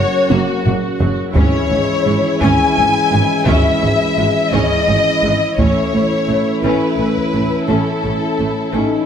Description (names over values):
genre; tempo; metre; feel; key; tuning
cinematic, epic orchestral film score; 57 BPM (dotted quarters); 6/8; straight; C# minor; A4 = 439 Hz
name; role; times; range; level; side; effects
warm symphonic violin section; melody; 0.0-9.1 s; F#4 to G#5; -19 LUFS; left 4 dB; none
warm symphonic violin section; second line; 0.0-9.1 s; F#4 to G#5; -21 LUFS; left 4 dB; none
clear symphonic viola section; accompaniment; 0.0-9.1 s; F#3 to F#4; -23 LUFS; right 2 dB; none
dark French horn section; sustained chords; 0.0-9.1 s; C#4 to A#4; -22 LUFS; left 6 dB; none
mellow trombone section; sustained chords; 0.0-9.1 s; C#3 to A3; -23 LUFS; right 4 dB; none
clear symphonic double bass section; bass; 0.0-8.8 s; F#1 to A1; -22 LUFS; right 3 dB; none
rich symphonic cello section; bass; 0.0-8.8 s; F#2 to A2; -22 LUFS; right 3 dB; none
taiko ensemble; drums; 0.3-7.5 s; none; -19 LUFS; equal; none
room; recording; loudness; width
moderate scoring stage reverb, RT60 1.7 s; none; -13 LUFS; side -8 dB against mid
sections
0.0-9.1 A section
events
drum fill 0.3-1.4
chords
0.0 F#; 1.4 C#m/G#; 5.6 A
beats
0.30 | 1.36 2.41 | 3.46 4.52 | 5.57 6.63 | 7.68 8.73